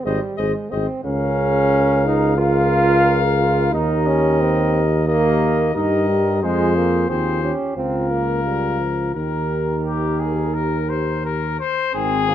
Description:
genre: classical, brass quintet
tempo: 89 BPM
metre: 4/4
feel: straight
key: unclear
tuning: A4 = 440 Hz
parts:
  - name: warm trombone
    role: accompaniment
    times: 0.0-12.3 s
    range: Db3 to F4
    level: -22 LUFS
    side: right 2 dB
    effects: none
  - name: warm trumpet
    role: melody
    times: 0.1-12.3 s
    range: G4 to F5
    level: -24 LUFS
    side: left 8 dB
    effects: none
  - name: mellow flugelhorn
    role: second line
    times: 0.1-12.3 s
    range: Bb3 to C5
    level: -27 LUFS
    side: right 8 dB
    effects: none
  - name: dark French horn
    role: accompaniment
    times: 0.1-12.3 s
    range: C4 to Ab4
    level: -25 LUFS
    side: left 6 dB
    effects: none
  - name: mellow bass trombone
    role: bass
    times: 0.1-12.3 s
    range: Ab1 to G2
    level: -21 LUFS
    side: right 1 dB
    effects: none
room: light reverb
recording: close, detailed microphones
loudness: -16 LUFS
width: side -11 dB against mid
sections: 0.0-11.9 A section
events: none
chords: 0.0 Ab; 1.1 Bbm7/Db; 3.7 Eb; 6.4 Fm; 7.8 Bbm/Db; 9.1 Eb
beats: 0.38 | 1.05 1.73 2.39 3.07 | 3.73 4.40 5.07 5.75 | 6.43 7.10 7.76 8.45 | 9.15 9.85 10.55 11.25 | 11.95

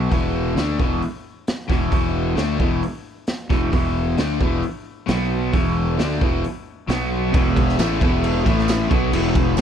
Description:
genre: classic rock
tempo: 133 BPM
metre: 4/4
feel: straight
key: E mixolydian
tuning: A4 = 444 Hz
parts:
  - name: biting overdriven guitar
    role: riff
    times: 0.0-9.6 s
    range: E2 to D4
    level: -25 LUFS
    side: right 17 dB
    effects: phaser
  - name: crunchy overdriven guitar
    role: riff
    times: 0.0-9.6 s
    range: E2 to D4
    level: -23 LUFS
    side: left 9 dB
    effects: spring reverb
  - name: fuzz fingered electric bass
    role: bass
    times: 0.0-9.6 s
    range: E1 to D2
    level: -24 LUFS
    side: right 1 dB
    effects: overdrive
  - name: raw garage drum kit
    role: drums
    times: 0.1-9.6 s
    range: crash cymbal, hi-hat, kick drum, snare drum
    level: -22 LUFS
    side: equal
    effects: none
  - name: bright tonewheel organ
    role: sustained chords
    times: 7.3-9.6 s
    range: A3 to E5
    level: -32 LUFS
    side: right 3 dB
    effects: none
  - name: tambourine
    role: percussion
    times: 7.8-9.6 s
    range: none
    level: -36 LUFS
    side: right 19 dB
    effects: none
room: little or no reverb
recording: none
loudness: -18 LUFS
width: side -8 dB against mid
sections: 0.0-7.3 A section; 7.3-9.6 B section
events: none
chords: 0.1 E5; 5.1 B5; 5.5 E5; 6.9 B5; 7.3 E; 8.5 A5; 8.9 E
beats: | 0.12 0.57 1.02 1.47 | 1.92 2.37 2.83 3.28 | 3.73 4.18 4.63 5.08 | 5.53 5.99 6.43 6.88 | 7.33 7.78 8.23 8.68 | 9.12 9.57

